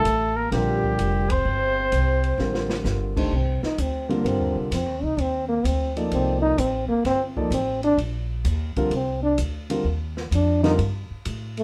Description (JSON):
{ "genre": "modal jazz", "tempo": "129 BPM", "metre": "4/4", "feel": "swing 68% on 8ths", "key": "C dorian", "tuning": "A4 = 440 Hz", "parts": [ { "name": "mellow trumpet", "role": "melody", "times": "0.0-2.9 s", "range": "G4 to C5", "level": "-27 LUFS", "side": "equal", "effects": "none" }, { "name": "breathy trombone", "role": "second line", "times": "0.0-11.6 s", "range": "G3 to Eb4", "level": "-27 LUFS", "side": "equal", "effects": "none" }, { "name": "dark baby grand piano", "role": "accompaniment", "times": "0.0-10.8 s", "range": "D3 to D5", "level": "-28 LUFS", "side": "equal", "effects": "none" }, { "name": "upright bass", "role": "bass", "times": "0.0-11.6 s", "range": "F1 to A2", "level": "-28 LUFS", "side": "equal", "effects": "none" }, { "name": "open jazz drum kit", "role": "drums", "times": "0.1-11.6 s", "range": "crash cymbal, hi-hat, kick drum, ride cymbal, snare drum", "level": "-36 LUFS", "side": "equal", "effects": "none" } ], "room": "light reverb", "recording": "none", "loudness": "-24 LUFS", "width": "mono", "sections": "0.0-3.3 A section; 3.3-11.6 B section", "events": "band accent 1.2; drum fill 2.4-2.9; trombone solo 3.3-11.6", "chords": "0.0 C7sus2; 3.3 Cm9" }